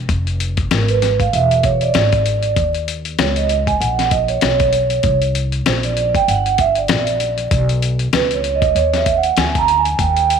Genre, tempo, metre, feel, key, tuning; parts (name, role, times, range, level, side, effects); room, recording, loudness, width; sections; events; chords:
hip hop, jazz-hop; 97 BPM; 4/4; swing 57% on 16ths; A4 = 443 Hz
upright bass; bass; 0.0-10.4 s; E1 to D#2; -20 LUFS; equal
dusty soul sampler-style drum kit; drums; 0.1-10.4 s; hi-hat, kick drum, snare drum; -20 LUFS; left 4 dB
vibraphone with soft mallets; accompaniment; 0.7-10.4 s; A#4 to A#5; -16 LUFS; right 6 dB
moderate echo chamber reverb, RT60 2.0 s; 1960s-style stereo, vinyl crackle; -14 LUFS; side -7 dB against mid
0.0-10.4 A section
vibraphone solo 0.0-10.4
0.1 Fdim; 1.3 E7; 2.6 D#5; 5.0 Csus2; 7.5 Badd9